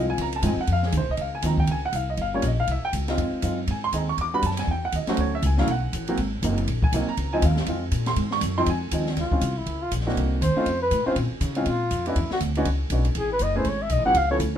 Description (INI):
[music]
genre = jazz, small-group swing and bop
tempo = 241 BPM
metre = 4/4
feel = swing 59% on 8ths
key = Db major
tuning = A4 = 440 Hz
[part]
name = warm baby grand piano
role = accompaniment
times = 0.0-14.6 s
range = F3 to D6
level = -26 LUFS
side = equal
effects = none
[part]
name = upright bass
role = bass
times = 0.0-14.6 s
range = Gb1 to Db3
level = -25 LUFS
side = equal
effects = none
[part]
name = open jazz drum kit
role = drums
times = 0.2-14.5 s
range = hi-hat, kick drum, ride cymbal, snare drum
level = -30 LUFS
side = equal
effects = none
[part]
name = mellow flugelhorn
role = melody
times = 9.2-14.4 s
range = Fb4 to Gb5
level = -24 LUFS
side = equal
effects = none
[sound]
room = moderate studio reverb, RT60 0.6 s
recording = minimal, uncompressed stereo recording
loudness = -22 LUFS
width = side -10 dB against mid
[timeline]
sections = 0.0-1.2 A section; 1.2-9.2 A section; 9.2-14.6 A section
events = flugelhorn solo 9.2-14.6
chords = 0.0 Dbmaj9; 2.2 Gm7b5; 2.7 Dbmaj9/C; 3.2 Fm7; 4.2 Em9; 4.7 A; 5.2 Dmaj9; 6.2 Ab9; 7.2 Dbmaj9; 10.2 Cm7b5; 10.7 F7b13; 11.2 Bbm7; 12.2 E13; 13.2 Amaj9